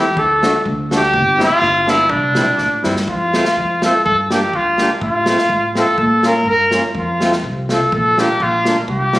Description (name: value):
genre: alpine folk, alpine dance band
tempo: 124 BPM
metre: 2/4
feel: swing 54% on 8ths, rubato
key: C major, F major from 3.1 s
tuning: A4 = 435 Hz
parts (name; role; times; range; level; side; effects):
- warm trumpet; melody; 0.0-9.2 s; D4 to Bb4; -15 LUFS; equal; none
- accordion; accompaniment; 0.0-9.2 s; G3 to G4; -21 LUFS; left 1 dB; none
- upright bass; bass; 0.0-9.2 s; G1 to B2; -22 LUFS; equal; none
- natural country drum kit; drums; 0.2-9.2 s; kick drum, snare drum; -23 LUFS; right 1 dB; none
room: moderate concert hall reverb, RT60 1.7 s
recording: recorded on a phone in the room, studio reverb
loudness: -13 LUFS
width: side -17 dB against mid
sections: 0.0-3.1 A section; 3.1-9.2 B section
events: drum fill 2.6-3.1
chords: 0.2 D; 1.1 C/G; 1.6 G; 2.1 Cadd9; 3.1 F; 4.1 Gm; 5.0 F/A; 6.0 Bbm; 7.0 F; 7.9 Bb